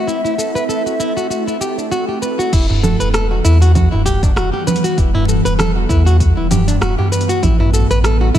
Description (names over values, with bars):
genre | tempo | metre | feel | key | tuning
organic downtempo | 98 BPM | 4/4 | swing 56% on 16ths | E minor | A4 = 437 Hz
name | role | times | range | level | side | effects
bansuri | melody | 0.0-1.9 s | E5 | -24 LUFS | left 1 dB | digital delay
ethereal airy pad | sustained chords | 0.0-8.4 s | C3 to F#5 | -22 LUFS | equal | ensemble chorus, built-in reverb, sidechain pumping
flamenco guitar | arpeggios | 0.0-8.4 s | D4 to B4 | -20 LUFS | left 1 dB | ping-pong delay
deep house drum kit | drums | 0.1-8.4 s | congas, crash cymbal, hi-hat, rim click, shaker | -22 LUFS | right 3 dB | none
warm sub bass | bass | 2.5-8.4 s | E1 to A2 | -14 LUFS | equal | none
electronic kick drum | drums | 2.5-7.6 s | none | -16 LUFS | equal | none
darbuka | percussion | 2.7-8.3 s | none | -20 LUFS | right 1 dB | none
room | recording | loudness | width
light reverb, digital ambience | none | -12 LUFS | side -11 dB against mid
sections
0.0-2.5 A section; 2.5-8.4 B section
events
none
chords
0.0 Am; 2.5 Em; 7.4 Amadd9